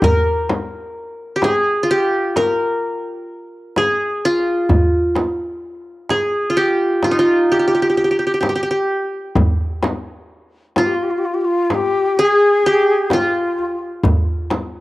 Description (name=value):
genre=Turkish makam ensemble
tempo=128 BPM (eighths)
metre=10/8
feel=straight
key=G makam kurdi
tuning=A4 = 439 Hz
part: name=qanun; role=melody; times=0.0-14.5 s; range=Eb4 to Bb4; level=-17 LUFS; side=equal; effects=cassette tape
part: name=darbuka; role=percussion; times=0.0-14.7 s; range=none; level=-19 LUFS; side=right 1 dB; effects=none
part: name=frame drum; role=percussion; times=0.0-14.7 s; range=none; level=-21 LUFS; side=left 2 dB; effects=none
part: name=breathy ney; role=second line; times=10.8-13.8 s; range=F4 to Ab4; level=-17 LUFS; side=left 2 dB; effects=cassette tape
room=light reverb, studio reverb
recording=home recording on cassette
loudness=-15 LUFS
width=side -18 dB against mid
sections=0.0-9.4 A section; 9.4-14.8 B section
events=none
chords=none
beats=| 0.03 0.49 0.96 1.43 1.89 2.36 2.83 3.29 3.76 4.22 | 4.69 5.16 5.63 6.09 6.56 7.03 7.50 7.96 8.43 8.90 | 9.37 9.83 10.30 10.77 11.24 11.70 12.17 12.64 13.11 13.57 | 14.04 14.51